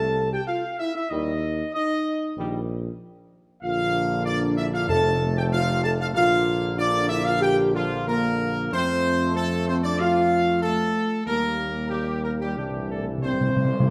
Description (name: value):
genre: classical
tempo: 95 BPM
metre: 4/4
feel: straight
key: F major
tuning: A4 = 440 Hz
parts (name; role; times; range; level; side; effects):
- warm trumpet section; melody; 0.0-13.9 s; F4 to A5; -28 LUFS; equal; none
- clear trombone section; sustained chords; 0.0-13.9 s; C3 to D4; -35 LUFS; equal; none
- mellow French horn section; sustained chords; 0.0-13.9 s; F3 to A4; -28 LUFS; equal; none
- mellow tuba; bass; 0.0-13.6 s; F1 to F2; -30 LUFS; equal; none
- timpani; percussion; 4.9-5.8, 12.6-13.9 s; F2 to C3; -28 LUFS; equal; none
room: moderate scoring stage reverb, RT60 1.8 s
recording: none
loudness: -24 LUFS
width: mono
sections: 0.0-13.9 A section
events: timpani fill 12.6-13.9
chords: 0.0 F; 1.1 Eb; 3.6 Bb; 4.9 F; 6.1 Bb; 8.7 F; 11.3 Eb; 12.6 Cadd9